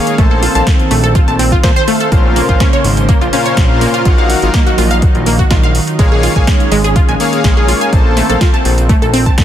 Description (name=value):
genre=progressive house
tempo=124 BPM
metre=4/4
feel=straight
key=unclear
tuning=A4 = 440 Hz
part: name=lush unison pad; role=sustained chords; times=0.0-9.4 s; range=Db3 to C5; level=-19 LUFS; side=right 1 dB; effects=chorus, sidechain pumping
part: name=soft supersaw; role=stabs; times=0.0-8.4 s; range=Bb2 to A5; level=-18 LUFS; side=left 3 dB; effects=sidechain pumping, dub echo
part: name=deep house drum kit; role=drums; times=0.1-9.4 s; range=hi-hat, snare drum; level=-21 LUFS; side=equal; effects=overdrive, sidechain pumping on hats
part: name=wide unison pluck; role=arpeggios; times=0.2-9.3 s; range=Ab3 to A5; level=-16 LUFS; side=right 1 dB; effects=sidechain pumping, dub echo
part: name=fat analog bass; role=bass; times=0.2-9.4 s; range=Ab1 to Bb2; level=-15 LUFS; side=equal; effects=sidechain pumping
part: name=electronic kick drum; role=drums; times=0.2-9.4 s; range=none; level=-11 LUFS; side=equal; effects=overdrive
room=light reverb, digital ambience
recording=dense, heavily limited modern master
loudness=-9 LUFS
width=side -11 dB against mid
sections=0.0-9.4 A section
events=none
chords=0.2 F/Bb; 2.1 Bbmadd9; 4.1 Ebmadd9; 6.0 Db; 7.9 F/Bb